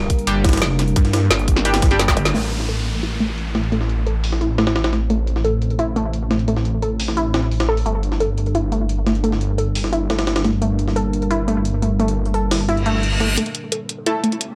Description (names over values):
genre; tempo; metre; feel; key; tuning
dark technical drum and bass; 174 BPM; 4/4; straight; A phrygian; A4 = 443 Hz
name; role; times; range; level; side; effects
deep dark ambient pad; sustained chords; 0.0-14.6 s; G3 to C5; -30 LUFS; equal; chorus, built-in reverb, sidechain pumping
snarling distorted saw bass; bass; 0.0-13.4 s; G1 to G2; -23 LUFS; equal; distortion, tube saturation, sidechain pumping
breakbeat sampler-style drum kit; drums; 0.1-13.3 s; hi-hat, snare drum; -28 LUFS; equal; high-pass filter on hats, low-pass filter on hats, high-pass filter on snare, low-pass filter on snare
drum and bass drum kit; drums; 0.1-4.3, 7.0-7.1, 9.8, 12.5-14.5 s; hi-hat, snare drum; -24 LUFS; equal; low-pass filter on hats, low-pass filter on snare, low-pass filter on room
electronic kick drum; drums; 0.1-2.2 s; none; -19 LUFS; equal; none
band-passed chord stab; stabs; 0.3-2.0, 14.1 s; G3 to A4; -26 LUFS; equal; chorus, phaser, delay
metallic wobble bass; bass; 0.6-2.3 s; F1 to G1; -22 LUFS; equal; distortion, chorus
zap, downlifter, reverse cymbal and riser; sound effects; 2.1-5.1, 12.8-14.6 s; none; -30 LUFS; equal; none
warbly dusty pluck; arpeggios; 2.3-14.3 s; A3 to A4; -25 LUFS; equal; chorus, sidechain pumping, delay
room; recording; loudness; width
light reverb; none; -19 LUFS; mono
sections
0.0-2.3 A section; 2.3-13.4 B section; 13.4-14.6 C section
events
drum fill 2.0-2.3; band accent 2.3; filter sweep on synth arpeggio sound 2.3-13.4, 13.4-14.6; reverse cymbal 12.8-13.4; build-up 13.4-14.6; riser 13.4-14.6; filter sweep 13.4-14.6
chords
0.0 Gm; 2.3 Am; 7.9 Gm; 13.4 Am